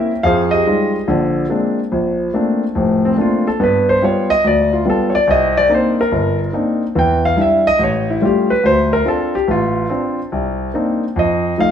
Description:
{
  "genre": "jazz",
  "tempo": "143 BPM",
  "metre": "4/4",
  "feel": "swing 65% on 8ths",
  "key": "Bb major",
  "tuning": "A4 = 440 Hz",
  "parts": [
    { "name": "warm concert grand piano", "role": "solo", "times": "0.0-11.7 s", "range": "F1 to G5", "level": "-13 LUFS", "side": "equal", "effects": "none" }
  ],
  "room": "wet stone room reverb, RT60 1.2 s",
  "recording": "band playing live in one room, nothing above 10.3 kHz",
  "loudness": "-13 LUFS",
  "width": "side -8 dB against mid",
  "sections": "0.0-1.9 A section; 1.9-11.7 B section",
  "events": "grand piano solo 1.9-11.7",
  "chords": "0.2 Fm9; 1.1 Bb9; 1.9 Bbmaj9; 3.6 G7; 5.3 Cm9; 7.0 Em7; 7.8 A7b13; 8.6 Dm7; 10.3 Cm9; 11.2 F7"
}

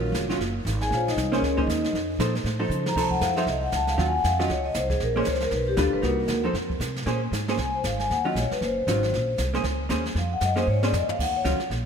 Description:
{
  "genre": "jazz, small-group swing and bop",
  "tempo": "234 BPM",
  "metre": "4/4",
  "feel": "swing 59% on 8ths",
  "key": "Bb minor",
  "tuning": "A4 = 440 Hz",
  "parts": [
    { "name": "vintage hollow-body jazz guitar", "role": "accompaniment", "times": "0.0-11.6 s", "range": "Eb3 to C5", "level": "-29 LUFS", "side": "right 2 dB", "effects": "analog chorus" },
    { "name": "upright bass", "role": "bass", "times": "0.0-11.9 s", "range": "F1 to Db3", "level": "-28 LUFS", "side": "right 1 dB", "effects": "none" },
    { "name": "jazz brush drum kit", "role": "drums", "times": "0.1-11.9 s", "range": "brushed snare drum, crash cymbal, hi-hat, kick drum, snare drum, toms", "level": "-32 LUFS", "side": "right 2 dB", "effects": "none" },
    { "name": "vibraphone with medium mallets", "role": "melody", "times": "0.8-11.4 s", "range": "Db4 to Bb5", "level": "-26 LUFS", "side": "left 3 dB", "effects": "ping-pong delay" }
  ],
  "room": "moderate lush hall reverb, RT60 1.9 s, small room reverb",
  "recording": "dreamy mix soaked in reverb",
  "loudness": "-22 LUFS",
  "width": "side -7 dB against mid",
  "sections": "0.0-7.1 A section; 7.1-11.9 A section",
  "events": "vibraphone solo 0.0-11.9; drum fill 2.7, 10.7-11.2",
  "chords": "0.0 Ebm9; 0.9 Bbm9; 1.9 F7; 4.0 Ebm9; 5.0 Bbm9; 5.5 G7; 6.0 Cm7b5; 6.6 F5; 7.1 Bbm9; 8.1 Ebm9; 9.1 Bbm9; 11.2 Ebm9"
}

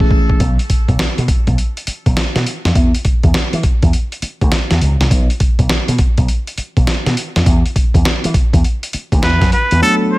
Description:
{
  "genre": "R&B, new jack swing",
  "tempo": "102 BPM",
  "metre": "4/4",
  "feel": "swing 64% on 16ths",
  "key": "unclear",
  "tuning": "A4 = 439 Hz",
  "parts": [
    { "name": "trumpet with straight mute", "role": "melody", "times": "0.0-0.1, 9.2-10.2 s", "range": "A4 to C#5", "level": "-18 LUFS", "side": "equal", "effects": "tape echo" },
    { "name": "tine electric piano", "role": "accompaniment", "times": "0.0-0.4, 9.8-10.2 s", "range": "E3 to A4", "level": "-17 LUFS", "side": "equal", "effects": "phaser" },
    { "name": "dusty soul sampler-style drum kit", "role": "drums", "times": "0.0-9.8 s", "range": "hi-hat, kick drum, snare drum", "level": "-14 LUFS", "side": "equal", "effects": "gated reverb" },
    { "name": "slap bass with an envelope filter", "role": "bass", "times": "0.4-9.8 s", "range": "B1 to E3", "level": "-15 LUFS", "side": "equal", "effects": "none" }
  ],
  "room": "digital ambience",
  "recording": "none",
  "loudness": "-12 LUFS",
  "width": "side -19 dB against mid",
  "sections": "0.4-9.8 A section",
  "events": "drum fill 0.0-0.4; band accent 0.0-0.4",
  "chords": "0.4 N.C.; 7.5 Dsus2 (rootless)"
}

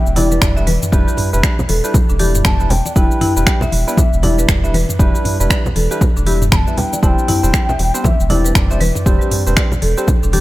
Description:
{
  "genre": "afro house",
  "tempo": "118 BPM",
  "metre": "4/4",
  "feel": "swing 60% on 16ths",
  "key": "E minor",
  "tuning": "A4 = 437 Hz",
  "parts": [
    { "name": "bansuri", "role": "melody", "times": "0.0-8.8 s", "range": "D5 to B5", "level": "-24 LUFS", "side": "left 1 dB", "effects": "tape echo" },
    { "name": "buzzing marimba with medium hard mallets", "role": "arpeggios", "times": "0.0-10.4 s", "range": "B3 to E5", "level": "-22 LUFS", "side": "left 2 dB", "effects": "sidechain pumping, tape echo" },
    { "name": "impact", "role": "sound effects", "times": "0.0-0.9 s", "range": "none", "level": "barely audible", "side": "none", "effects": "none" },
    { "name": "warm sub bass", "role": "bass", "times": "0.1-10.4 s", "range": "E1", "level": "-17 LUFS", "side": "equal", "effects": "sidechain pumping" },
    { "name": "deep house drum kit", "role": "drums", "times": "0.1-10.4 s", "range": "cabasa, finger snaps, hi-hat, toms", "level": "-20 LUFS", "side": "equal", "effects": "none" },
    { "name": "barky tine electric piano", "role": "stabs", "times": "0.2-10.4 s", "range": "G3 to E5", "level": "-23 LUFS", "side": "right 4 dB", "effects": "sidechain pumping, dub echo" },
    { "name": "congas", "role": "percussion", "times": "0.2-10.4 s", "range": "none", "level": "-23 LUFS", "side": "left 1 dB", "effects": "dub echo" },
    { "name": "electronic kick drum", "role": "drums", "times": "0.4-10.2 s", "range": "none", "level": "-15 LUFS", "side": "equal", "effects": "none" }
  ],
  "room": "little or no reverb",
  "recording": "echo-heavy mix",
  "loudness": "-12 LUFS",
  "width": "side -17 dB against mid",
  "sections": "0.0-10.4 A section",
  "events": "impact 0.0-0.9",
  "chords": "0.0 Em7; 7.0 Csus2/E"
}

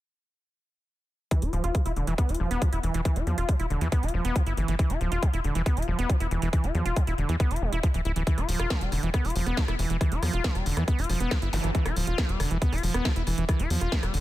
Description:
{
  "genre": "psychedelic trance",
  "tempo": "138 BPM",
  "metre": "4/4",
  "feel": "straight",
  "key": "E phrygian",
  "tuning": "A4 = 440 Hz",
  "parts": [
    { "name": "overdriven acid bass", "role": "riff", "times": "1.3-14.2 s", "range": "D3 to F4", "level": "-30 LUFS", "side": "equal", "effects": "auto-pan, sidechain pumping, ping-pong delay" },
    { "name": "drum and bass drum kit", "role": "drums", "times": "1.3-14.2 s", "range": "hi-hat, rim click, snare drum", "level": "-34 LUFS", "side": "equal", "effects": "none" },
    { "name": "electronic kick drum", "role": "drums", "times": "1.3-14.0 s", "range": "none", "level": "-24 LUFS", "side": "equal", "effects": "none" },
    { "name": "tight sequencer bass", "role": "bass", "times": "1.4-14.2 s", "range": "D1 to E2", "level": "-27 LUFS", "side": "equal", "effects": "none" },
    { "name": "zap", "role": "sound effects", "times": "11.5-11.6 s", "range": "none", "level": "-35 LUFS", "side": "equal", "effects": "none" }
  ],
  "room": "little or no reverb",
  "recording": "none",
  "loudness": "-24 LUFS",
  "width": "side -15 dB against mid",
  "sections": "1.3-14.2 A section",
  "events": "none",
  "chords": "1.3 E5"
}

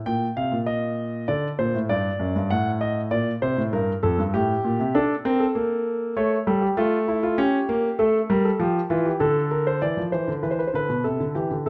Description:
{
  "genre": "classical, baroque-style two-part invention for grand piano",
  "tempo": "98 BPM",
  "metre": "4/4",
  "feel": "straight",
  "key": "G minor",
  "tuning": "A4 = 439 Hz",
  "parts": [
    { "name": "warm concert grand piano", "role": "solo", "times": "0.1-11.7 s", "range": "F2 to G5", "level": "-23 LUFS", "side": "equal", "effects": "none" }
  ],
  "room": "moderate scoring stage reverb, RT60 1.6 s",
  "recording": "close, detailed microphones",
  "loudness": "-23 LUFS",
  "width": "mono",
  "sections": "0.1-9.8 A section; 9.8-11.7 B section",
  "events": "none",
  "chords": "0.1 Gm/Bb; 1.3 D; 2.5 D7/A; 3.7 Gm; 4.9 D5; 6.2 A; 7.4 A7; 8.6 Dm; 9.8 E5; 11.0 Am/C"
}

